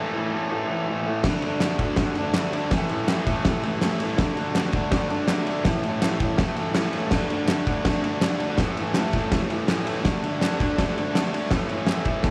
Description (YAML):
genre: garage rock duo or trio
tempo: 164 BPM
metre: 4/4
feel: straight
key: unclear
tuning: A4 = 440 Hz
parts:
  - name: fuzz guitar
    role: riff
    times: 0.0-12.3 s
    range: A2 to D4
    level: -28 LUFS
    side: equal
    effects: distortion
  - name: oversized low-tuned drum kit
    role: drums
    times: 1.2-12.3 s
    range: crash cymbal, kick drum, ride cymbal, snare drum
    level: -27 LUFS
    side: equal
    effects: vintage 12-bit sampler grit
  - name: group handclap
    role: percussion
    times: 1.6-12.0 s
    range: none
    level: -39 LUFS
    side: equal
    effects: none
room: light reverb, small room ambience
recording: none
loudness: -24 LUFS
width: mono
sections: 0.0-1.2 A section; 1.2-12.3 A section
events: break 0.0-1.2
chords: 0.0 A5; 1.2 D5; 2.7 A5; 4.2 D5; 5.7 A5; 7.1 D5; 8.6 A5; 10.1 D5; 11.5 A5